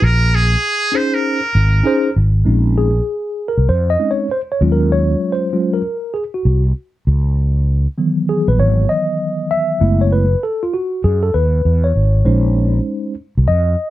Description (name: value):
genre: hip hop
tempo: 98 BPM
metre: 4/4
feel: swing 63% on 16ths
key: Bb minor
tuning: A4 = 440 Hz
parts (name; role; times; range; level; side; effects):
- trumpet with metal mute; melody; 0.0-2.2 s; Ab4 to C5; -18 LUFS; right 2 dB; none
- mellow tine electric piano; accompaniment; 0.0-13.9 s; Eb3 to Fb5; -17 LUFS; equal; medium stereo tremolo
- fretless electric bass; bass; 0.0-13.7 s; Gb1 to Gb2; -13 LUFS; equal; none
room: light reverb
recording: dark, warm production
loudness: -14 LUFS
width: side -14 dB against mid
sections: 0.0-2.5 A section; 2.5-13.9 B section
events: tine electric piano solo 2.5-13.9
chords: 0.0 Bbm11; 4.6 Ebm11; 7.1 Dbm11; 9.8 Gbm11; 12.3 Bbm11